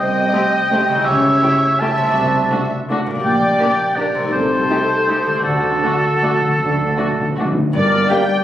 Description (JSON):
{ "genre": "classical, orchestral ballroom waltz", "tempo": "147-185 BPM", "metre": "3/4", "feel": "rubato", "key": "G minor", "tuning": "A4 = 439 Hz", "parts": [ { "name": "clear oboe", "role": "second line", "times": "0.0-8.2 s", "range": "A4 to A5", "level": "-18 LUFS", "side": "right 1 dB", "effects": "none" }, { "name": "muted studio violin section", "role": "second line", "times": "0.0-8.2 s", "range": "F#4 to E5", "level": "-23 LUFS", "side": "left 1 dB", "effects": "none" }, { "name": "concert harp", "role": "arpeggios", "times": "0.0-8.4 s", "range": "G2 to G4", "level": "-24 LUFS", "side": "left 4 dB", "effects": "none" }, { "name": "muted studio cello section", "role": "bass", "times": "0.0-8.0 s", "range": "G2 to D3", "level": "-24 LUFS", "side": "right 1 dB", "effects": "none" }, { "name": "muted studio double bass section", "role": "bass", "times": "0.0-8.0 s", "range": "G1 to D2", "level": "-28 LUFS", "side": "right 4 dB", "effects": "none" }, { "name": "muted studio violin section", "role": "melody", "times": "0.3-8.4 s", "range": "F#4 to G5", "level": "-24 LUFS", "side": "left 2 dB", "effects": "none" }, { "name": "muted studio viola section", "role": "accompaniment", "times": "0.3-8.2 s", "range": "A3 to E4", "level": "-25 LUFS", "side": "right 1 dB", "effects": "none" }, { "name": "timpani", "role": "percussion", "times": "5.4-7.7 s", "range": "D3", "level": "-23 LUFS", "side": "equal", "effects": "none" }, { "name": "hollow flute section", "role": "second line", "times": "7.7-8.4 s", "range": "Bb4 to D5", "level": "-21 LUFS", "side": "equal", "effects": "none" }, { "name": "warm clarinet", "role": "second line", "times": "8.1-8.2 s", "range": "G4", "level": "-24 LUFS", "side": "left 3 dB", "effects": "none" }, { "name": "mellow bassoon", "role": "accompaniment", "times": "8.1-8.2 s", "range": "Bb3", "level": "-23 LUFS", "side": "right 4 dB", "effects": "none" }, { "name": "warm French horn section", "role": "sustained chords", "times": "8.1-8.2 s", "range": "D4 to G4", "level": "-26 LUFS", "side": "left 2 dB", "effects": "none" }, { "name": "warm trombone section", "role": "sustained chords", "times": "8.1-8.2 s", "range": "G3 to Bb3", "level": "-24 LUFS", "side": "right 2 dB", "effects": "none" } ], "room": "wet recital hall reverb, RT60 1.4 s", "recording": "recorded on a phone in the room, club reverb, compression", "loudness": "-14 LUFS", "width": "side -12 dB against mid", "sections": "0.0-7.7 A section", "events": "timpani fill 5.4-7.7", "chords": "0.0 Am7b5/C; 1.1 A7/C#; 2.2 D7/C; 3.2 Gm/Bb; 4.3 Am7b5/C; 5.4 D; 7.7 Gm" }